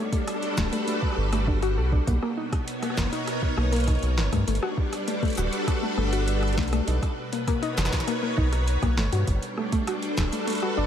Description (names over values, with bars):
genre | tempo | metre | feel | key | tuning
IDM | 100 BPM | 4/4 | straight | unclear | A4 = 444 Hz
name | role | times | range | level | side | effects
soft string machine | sustained chords | 0.0-10.9 s | B2 to C#5 | -29 LUFS | equal | ensemble chorus
warbly dusty pluck | arpeggios | 0.0-10.9 s | A3 to A4 | -30 LUFS | left 3 dB | chorus, ping-pong delay
booming analog drum machine | drums | 0.1-10.7 s | hi-hat, rim click, shaker, snare drum | -33 LUFS | right 1 dB | tape echo
electronic kick drum | drums | 0.1-10.3 s | none | -26 LUFS | equal | overdrive
round analog bass | bass | 0.6-10.9 s | D1 to G2 | -25 LUFS | equal | none
room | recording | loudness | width
little or no reverb | none | -23 LUFS | side -9 dB against mid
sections
0.0-10.9 A section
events
kick drops out 10.5-10.9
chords
0.0 Gmaj9; 2.1 Bmaj9; 4.2 Gmaj9; 6.9 Bmaj9; 9.0 Gmaj9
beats
0.28 0.88 1.48 | 2.08 2.67 3.27 3.88 | 4.47 5.08 5.67 6.28 | 6.88 7.47 8.07 8.68 | 9.28 9.88 10.47